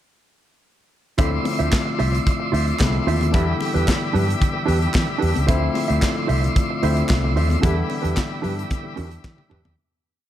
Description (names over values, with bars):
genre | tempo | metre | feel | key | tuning
disco | 112 BPM | 4/4 | straight | D dorian | A4 = 438 Hz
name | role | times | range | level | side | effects
barky tine electric piano | accompaniment | 1.2-9.8 s | D3 to E4 | -26 LUFS | left 3 dB | wide subtle chorus
mellow electric guitar | accompaniment | 1.2-9.7 s | D4 to E5 | -28 LUFS | right 6 dB | none
tonewheel organ | sustained chords | 1.2-9.8 s | F3 to C6 | -27 LUFS | equal | fast rotary speaker
fingered electric bass | bass | 1.2-9.7 s | C2 to E3 | -21 LUFS | equal | none
modern studio drum kit | drums | 1.2-9.8 s | handclaps, hi-hat, kick drum, snare drum, toms | -23 LUFS | equal | none
congas | percussion | 1.2-9.8 s | none | -31 LUFS | left 4 dB | none
group handclap | percussion | 1.7-9.4 s | none | -36 LUFS | right 3 dB | none
room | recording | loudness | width
light reverb, small room ambience | none | -18 LUFS | side -12 dB against mid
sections
1.2-9.8 groove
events
fade-out 7.6-9.8; drum fill 9.2-9.8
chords
1.2 Dm9; 3.3 Em7; 5.5 Dm9; 7.6 Em7